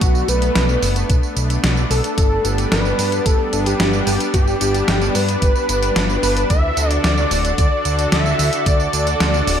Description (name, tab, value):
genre	synthwave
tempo	111 BPM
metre	4/4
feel	straight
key	unclear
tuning	A4 = 440 Hz
part	wide unison lead	melody	0.0-9.6 s	F#4 to E5	-20 LUFS	equal	ping-pong delay
part	lush unison pad	sustained chords	0.0-9.6 s	D3 to A4	-23 LUFS	left 1 dB	chorus, sidechain pumping
part	fat analog bass	bass	0.0-9.6 s	D1 to G2	-20 LUFS	equal	sidechain pumping
part	clean 12-bit digital drum machine	drums	0.0-9.6 s	hi-hat, snare drum, tambourine	-22 LUFS	equal	overdrive, gated reverb
part	electronic kick drum	drums	0.0-8.8 s	none	-16 LUFS	equal	overdrive
room	moderate plate reverb, RT60 1.8 s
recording	bright 1980s-style digital production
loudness	-15 LUFS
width	side -8 dB against mid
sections	0.0-9.6 A section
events	none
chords	0.0 Bm7; 2.2 G; 6.5 D